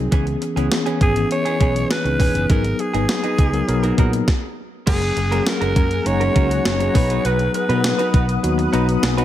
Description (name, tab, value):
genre	1980s-style pop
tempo	101 BPM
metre	4/4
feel	straight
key	unclear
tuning	A4 = 439 Hz
part	bell-like tine electric piano	accompaniment	0.0-9.2 s	E3 to A#5	-22 LUFS	left 3 dB	medium stereo tremolo
part	mellow fretless electric bass	bass	0.0-9.2 s	E1 to B2	-22 LUFS	equal	none
part	direct-recorded clean electric guitar	riff	0.1-9.2 s	E3 to B4	-27 LUFS	right 5 dB	lush chorus
part	clean 12-bit digital drum machine	drums	0.1-9.2 s	crash cymbal, hi-hat, kick drum, snare drum	-20 LUFS	equal	gated reverb
part	raspy alto saxophone	melody	1.0-8.4 s	G#4 to C#5	-24 LUFS	equal	tape echo
part	granular cloud pad	sustained chords	5.6-9.2 s	G#4 to D#6	-28 LUFS	left 1 dB	built-in reverb, tremolo
room	light reverb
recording	none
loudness	-16 LUFS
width	side -12 dB against mid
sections	0.0-4.9 A section; 4.9-9.2 B section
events	stop 4.3-4.9; tine electric piano fill 8.4-9.2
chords	0.1 C#m7; 2.5 G#m7; 3.7 Bmaj7; 4.9 F#add9; 7.0 B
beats	| 0.12 0.71 1.31 1.90 | 2.50 3.09 3.68 4.28 | 4.87 5.47 6.06 6.65 | 7.25 7.84 8.44 9.03